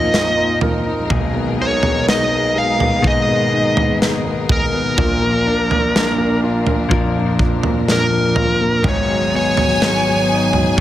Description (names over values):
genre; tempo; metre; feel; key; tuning
pop ballad; 62 BPM; 4/4; straight; unclear; A4 = 440 Hz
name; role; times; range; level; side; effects
smooth overdriven lead guitar; melody; 0.0-10.8 s; Bb4 to F5; -19 LUFS; equal; digital delay
clear concert grand piano; accompaniment; 0.0-10.8 s; Ab1 to Bb4; -20 LUFS; right 1 dB; none
warm studio string section; sustained chords; 0.0-10.8 s; Ab2 to Bb4; -23 LUFS; left 1 dB; none
direct-recorded clean electric guitar; arpeggios; 0.0-10.8 s; Ab2 to Bb4; -24 LUFS; left 5 dB; digital delay
modern studio drum kit; drums; 0.1-10.8 s; kick drum, snare drum, toms; -20 LUFS; right 1 dB; none
rich studio violin section; second line; 8.8-10.8 s; Ab5; -21 LUFS; equal; none
room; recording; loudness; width
light reverb; none; -14 LUFS; side -13 dB against mid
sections
0.0-10.8 A section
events
none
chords
0.0 Bbsus4; 1.1 Abmadd9/Cb; 5.0 Bb; 8.8 Abm7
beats
0.14 | 1.10 2.07 3.04 4.01 | 4.98 5.94 6.91 7.88 | 8.85 9.81 10.78